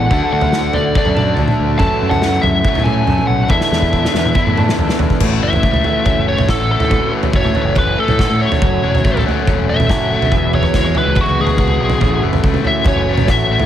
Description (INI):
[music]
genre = indie rock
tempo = 141 BPM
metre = 4/4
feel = straight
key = A major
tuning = A4 = 440 Hz
[part]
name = biting lead guitar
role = melody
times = 0.0-13.7 s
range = F#4 to A5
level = -18 LUFS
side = equal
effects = overdrive, slapback echo
[part]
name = electric guitar through a small old amp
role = riff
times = 0.0-13.7 s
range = E3 to A4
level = -22 LUFS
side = right 5 dB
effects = lush chorus, slapback echo
[part]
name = overdriven electric guitar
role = riff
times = 0.0-13.7 s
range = E2 to F#4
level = -20 LUFS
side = left 8 dB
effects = none
[part]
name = growling picked electric bass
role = bass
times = 0.0-13.7 s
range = E1 to A2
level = -19 LUFS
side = equal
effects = overdrive
[part]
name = loose indie drum kit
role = drums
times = 0.1-13.7 s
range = crash cymbal, kick drum, snare drum, toms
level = -17 LUFS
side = right 1 dB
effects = none
[sound]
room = light reverb, small room ambience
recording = none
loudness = -12 LUFS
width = side -10 dB against mid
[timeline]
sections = 0.0-5.2 A section; 5.2-13.7 B section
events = drum fill 3.5-5.2; lead electric guitar solo 5.2-13.7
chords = 0.1 D; 1.8 F#m7; 3.5 E7sus4; 5.2 A6; 8.6 F#m; 10.3 Eadd9; 12.0 A6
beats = | 0.10 0.53 0.95 1.38 | 1.80 2.23 2.65 3.08 | 3.50 3.93 4.35 4.78 | 5.20 5.63 6.06 6.48 | 6.91 7.33 7.76 8.19 | 8.61 9.04 9.46 9.89 | 10.31 10.74 11.16 11.59 | 12.01 12.44 12.86 13.29